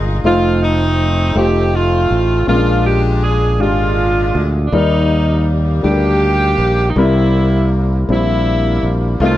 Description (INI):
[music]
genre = slow gospel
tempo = 54 BPM (dotted quarters)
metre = 6/8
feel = straight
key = unclear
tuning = A4 = 441 Hz
[part]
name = clear saxophone section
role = melody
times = 0.0-9.4 s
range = G3 to Ab4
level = -20 LUFS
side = left 3 dB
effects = none
[part]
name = warm concert grand piano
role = accompaniment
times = 0.0-9.4 s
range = Bb2 to D5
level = -18 LUFS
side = left 2 dB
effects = none
[part]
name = modern bright fingered electric bass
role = bass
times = 0.0-9.4 s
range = F1 to Eb2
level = -16 LUFS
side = equal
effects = none
[part]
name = bright alto saxophone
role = melody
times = 0.3-9.4 s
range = D4 to Ab4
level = -19 LUFS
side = right 4 dB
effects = none
[sound]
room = studio ambience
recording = dry, close 1970s-style studio recording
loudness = -12 LUFS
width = side -13 dB against mid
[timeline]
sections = 0.0-9.4 A section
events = none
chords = 0.2 F7; 2.5 Bb7; 4.7 Ebmaj7; 7.0 C7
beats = | 0.24 1.36 | 2.48 3.60 | 4.72 5.84 | 6.96 8.07 | 9.20